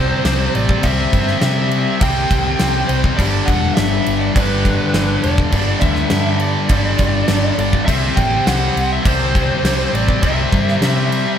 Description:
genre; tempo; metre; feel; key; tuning
hard rock; 102 BPM; 4/4; straight; unclear; A4 = 440 Hz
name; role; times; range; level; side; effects
lead guitar through a small cranked amp; melody; 0.0-11.4 s; B4 to G5; -21 LUFS; right 1 dB; overdrive
high-gain distorted guitar; riff; 0.0-11.4 s; G2 to C4; -18 LUFS; left 2 dB; distortion
hollow-body short-scale picked electric bass; bass; 0.0-11.2 s; E1 to C3; -20 LUFS; equal; none
gated 80s drum kit; drums; 0.2-11.3 s; crash cymbal, kick drum, snare drum; -19 LUFS; equal; none
room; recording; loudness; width
light reverb; none; -14 LUFS; side -9 dB against mid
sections
0.0-11.4 A section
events
none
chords
0.0 C; 3.2 G5; 7.9 C

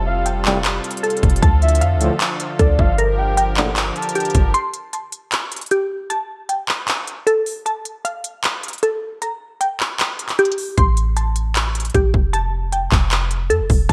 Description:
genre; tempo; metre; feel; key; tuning
hip hop, trap; 154 BPM; 4/4; half-time; unclear; A4 = 440 Hz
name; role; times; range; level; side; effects
pipe organ, strings celeste; sustained chords; 0.0-4.5 s; C3 to Bb4; -29 LUFS; equal; none
glassy wavetable pluck; arpeggios; 0.0-13.9 s; G4 to C6; -23 LUFS; equal; chorus, low-pass filter, digital delay
clean 808-style bass; bass; 0.0-4.5, 10.8-13.9 s; F1 to F2; -21 LUFS; equal; none
gliding portamento lead; second line; 0.1-4.5 s; D5 to A5; -27 LUFS; equal; chorus, digital delay
trap drum kit; drums; 0.3-13.9 s; handclaps, hi-hat, kick drum; -22 LUFS; equal; gated reverb
warm brass ensemble; stabs; 0.5-3.7 s; Bb1 to G3; -25 LUFS; equal; none
room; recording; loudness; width
light reverb; bright 1980s-style digital production; -19 LUFS; mono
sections
0.0-4.5 A section; 4.5-13.9 B section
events
break 4.5-10.8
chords
0.0 Fadd9; 1.4 Dm; 3.0 Gmadd9; 4.5 Am7; 6.1 Gsus2; 7.7 F; 9.2 Gm; 10.8 Am7; 12.3 Fadd9

